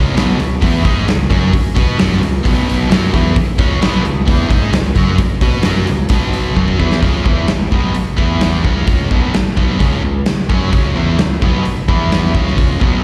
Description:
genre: hard rock.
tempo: 130 BPM.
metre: 4/4.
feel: straight.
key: C# minor.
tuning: A4 = 441 Hz.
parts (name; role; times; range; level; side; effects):
overdriven electric guitar; riff; 0.0-13.0 s; B2 to B4; -25 LUFS; equal; slapback echo.
sludgy distorted guitar; riff; 0.0-13.0 s; B2 to B4; -21 LUFS; equal; overdrive, slapback echo.
modern bright fingered electric bass; bass; 0.0-13.0 s; B1 to B2; -20 LUFS; equal; none.
big rock drum kit; drums; 0.2-12.9 s; hi-hat, kick drum, snare drum; -17 LUFS; equal; none.
room: light reverb, small room ambience.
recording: live gig heard through the venue's PA, recital hall reverb.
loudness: -14 LUFS.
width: mono.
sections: 0.0-7.0 A section; 7.0-13.0 B section.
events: drum fill 6.6-7.0.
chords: 0.0 C#m; 2.4 B5; 2.9 C#m; 6.1 B5; 6.6 C#m; 8.2 E5; 8.7 C#m; 11.9 E5; 12.3 C#5.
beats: 0.16 0.62 1.07 | 1.53 1.99 2.45 2.91 | 3.37 3.82 4.28 4.74 | 5.20 5.66 6.12 6.58 | 7.04 7.50 7.96 8.42 | 8.88 9.34 9.81 10.27 | 10.73 11.19 11.65 12.12 | 12.58.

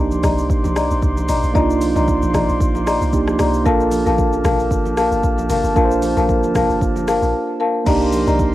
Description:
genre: amapiano.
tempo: 114 BPM.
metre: 4/4.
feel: swing 55% on 16ths.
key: C dorian.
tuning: A4 = 439 Hz.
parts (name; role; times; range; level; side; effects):
mellow tine electric piano; accompaniment; 0.0-8.5 s; Bb3 to C5; -20 LUFS; right 4 dB; cassette tape.
mellow woodwind section; sustained chords; 0.0-8.5 s; Bb3 to C6; -27 LUFS; equal; sidechain pumping, cassette tape.
deep log drum bass; bass; 0.0-8.5 s; G1 to C2; -22 LUFS; equal; none.
deep house drum kit; drums; 0.1-8.5 s; crash cymbal, hi-hat, kick drum, rim click, shaker; -22 LUFS; equal; cassette tape.
congas; percussion; 0.1-8.4 s; none; -28 LUFS; left 2 dB; none.
marimba with medium mallets; stabs; 0.2-8.4 s; Bb4 to Bb5; -20 LUFS; left 4 dB; cassette tape, analog delay.
room: digital ambience.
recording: home recording on cassette.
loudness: -15 LUFS.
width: side -15 dB against mid.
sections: 0.0-7.9 A section.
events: drop 0.0-7.9; break 7.3-7.9.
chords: 0.0 Cm9; 3.7 Gm9; 7.9 Cm9.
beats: 0.50 1.02 | 1.55 2.08 2.60 3.13 | 3.66 4.18 4.71 5.24 | 5.76 6.29 6.81 7.34 | 7.87 8.39.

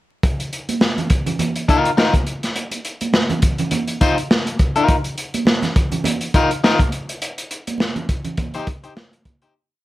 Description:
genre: funk.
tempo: 103 BPM.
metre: 4/4.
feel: swing 56% on 16ths.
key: C minor.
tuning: A4 = 442 Hz.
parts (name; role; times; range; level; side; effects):
crunchy breakbeat drum kit; drums; 0.2-9.5 s; hi-hat, kick drum, snare drum; -18 LUFS; equal; none.
congas; percussion; 0.7-9.4 s; none; -24 LUFS; right 3 dB; none.
electric guitar at the edge of break-up; accompaniment; 1.7-9.5 s; Eb4 to C5; -17 LUFS; left 3 dB; none.
room: light reverb.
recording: vinyl crackle.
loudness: -17 LUFS.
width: side -16 dB against mid.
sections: 0.2-9.5 breakdown.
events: fade-out 7.2-9.5.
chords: 0.2 Cm7 (rootless); 7.2 Eb6.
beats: | 0.23 0.81 1.39 1.97 | 2.56 3.14 3.72 4.30 | 4.89 5.47 6.05 6.63 | 7.22 7.80 8.38 8.96.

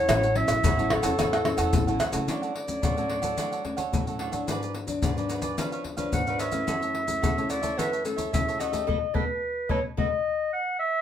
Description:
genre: samba and choro.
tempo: 109 BPM.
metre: 4/4.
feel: straight.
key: D major.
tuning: A4 = 435 Hz.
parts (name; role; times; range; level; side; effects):
clear clarinet; melody; 0.0-11.0 s; A4 to F#5; -28 LUFS; left 1 dB; none.
cavaquinho; accompaniment; 0.0-10.1 s; D4 to F#5; -32 LUFS; right 5 dB; none.
nylon-string guitar; accompaniment; 0.0-10.1 s; F#2 to G4; -32 LUFS; left 3 dB; none.
upright bass; bass; 0.0-2.3 s; A1 to E2; -30 LUFS; equal; none.
maracas, surdo, pandeiro and tamborim; percussion; 0.1-10.1 s; none; -28 LUFS; left 2 dB; none.
room: wet studio reverb, RT60 0.5 s.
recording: band playing live in one room.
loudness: -24 LUFS.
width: side -9 dB against mid.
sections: 0.0-2.3 A section; 2.3-11.0 B section.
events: band accent 8.9-11.0.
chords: 0.0 A6; 2.3 Dmaj7; 4.5 G#m7b5; 5.6 C#7b9; 6.7 F#m7; 8.9 B7.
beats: | 0.09 0.64 1.18 1.73 | 2.28 2.83 3.38 3.93 | 4.48 5.03 5.58 6.13 | 6.68 7.23 7.78 8.33 | 8.88 9.43 9.98 10.53.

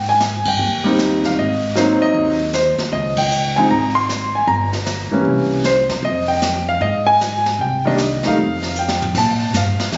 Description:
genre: jazz piano trio.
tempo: 154 BPM.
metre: 4/4.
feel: swing 65% on 8ths.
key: F minor.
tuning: A4 = 440 Hz.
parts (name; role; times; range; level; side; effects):
warm concert grand piano; melody; 0.0-9.9 s; Eb3 to C6; -19 LUFS; equal; none.
upright bass; bass; 0.0-10.0 s; G1 to Bb2; -25 LUFS; equal; none.
jazz brush drum kit; drums; 0.2-10.0 s; brushed snare drum, crash cymbal, hi-hat, kick drum, ride cymbal, snare drum, toms; -27 LUFS; equal; none.
room: light reverb.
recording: recorded on a phone in the room, studio reverb, nothing above 7.8 kHz.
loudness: -17 LUFS.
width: mono.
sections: 0.0-9.2 A section.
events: band accent 0.4, 3.1; drum fill 8.8-9.2.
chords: 0.0 Abmaj7; 1.4 Ab7; 2.9 Dbmaj7sus2; 4.5 Gm; 5.3 C7b9; 6.0 Fm; 7.6 Cm; 8.4 Fsus2; 9.2 Bbmaj7(no3).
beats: 0.20 0.59 0.98 | 1.37 1.76 2.15 2.54 | 2.92 3.31 3.70 4.09 | 4.48 4.87 5.26 5.65 | 6.04 6.43 6.82 7.20 | 7.59 7.98 8.37 8.76 | 9.15 9.54 9.93.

